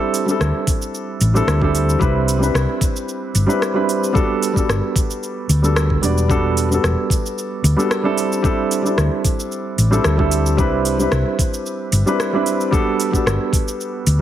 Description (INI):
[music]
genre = sunset chillout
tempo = 112 BPM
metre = 4/4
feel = swing 53% on 16ths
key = unclear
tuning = A4 = 440 Hz
[part]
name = dark concert grand piano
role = accompaniment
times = 0.0-14.2 s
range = G3 to D5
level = -19 LUFS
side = right 1 dB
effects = auto-pan, ping-pong delay
[part]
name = smooth R&B drum kit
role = drums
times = 0.1-14.2 s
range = hi-hat, rim click, shaker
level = -24 LUFS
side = equal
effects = overdrive
[part]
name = hollow-body short-scale fingered electric bass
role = bass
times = 0.4-14.2 s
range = E1 to D2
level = -17 LUFS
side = equal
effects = none
[part]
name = electronic kick drum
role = drums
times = 0.7-13.6 s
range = none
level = -19 LUFS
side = equal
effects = none
[sound]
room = moderate plate reverb, RT60 1.3 s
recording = heavily compressed radio sound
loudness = -16 LUFS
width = side -11 dB against mid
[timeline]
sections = 0.0-14.2 A section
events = none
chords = 0.0 D7sus4; 2.0 Cmaj9; 4.2 Gmaj9; 6.3 Em11; 8.2 D7sus4; 10.6 Cmaj9; 12.7 Gmaj9